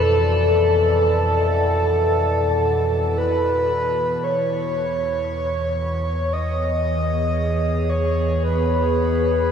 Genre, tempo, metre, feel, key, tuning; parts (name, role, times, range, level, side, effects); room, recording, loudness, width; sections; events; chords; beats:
ambient; free time; E major; A4 = 439 Hz
breathy flute-like synth lead; melody; 0.0-9.5 s; A4 to D#5; -21 LUFS; equal; tremolo, lush chorus, shimmer reverb, ping-pong delay
warbly tape-like pad; sustained chords; 0.0-9.5 s; E3 to A5; -24 LUFS; left 1 dB; chorus, built-in reverb, phaser, shimmer reverb
warm sub bass; bass; 0.0-9.5 s; E2 to F2; -23 LUFS; equal; tube saturation
overtone-sweeping drone; drone; 0.0-4.3 s; B2 to E3; -28 LUFS; equal; chorus, built-in reverb, phaser
wet huge ambient reverb, RT60 8.6 s; in a vast, echoing space; -18 LUFS; side -7 dB against mid
0.0-4.2 A section; 4.2-9.5 B section
0.0 F6; 4.2 E6
free time